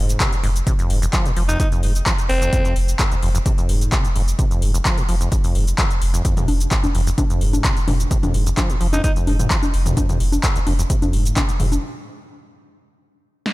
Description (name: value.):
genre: acid house.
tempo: 129 BPM.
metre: 4/4.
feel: straight.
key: F minor.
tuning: A4 = 440 Hz.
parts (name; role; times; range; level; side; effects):
deep acid bass; riff; 0.0-11.7 s; Eb2 to F3; -25 LUFS; equal; tube saturation, vintage 12-bit sampler grit.
saturated sub bass; bass; 0.0-11.8 s; F1; -20 LUFS; equal; sidechain pumping.
electro analog drum machine; drums; 0.1-13.5 s; congas, handclaps, hi-hat, shaker, snare drum, toms; -23 LUFS; left 1 dB; none.
electronic kick drum; drums; 0.2-11.5 s; none; -20 LUFS; equal; none.
raspy alto saxophone; melody; 1.5-2.8, 8.9-9.1 s; C4 to Eb4; -26 LUFS; equal; dub echo.
room: little or no reverb.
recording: none.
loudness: -16 LUFS.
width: side -19 dB against mid.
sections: 0.0-13.5 A section.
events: break 11.8-13.5.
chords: 0.0 F5.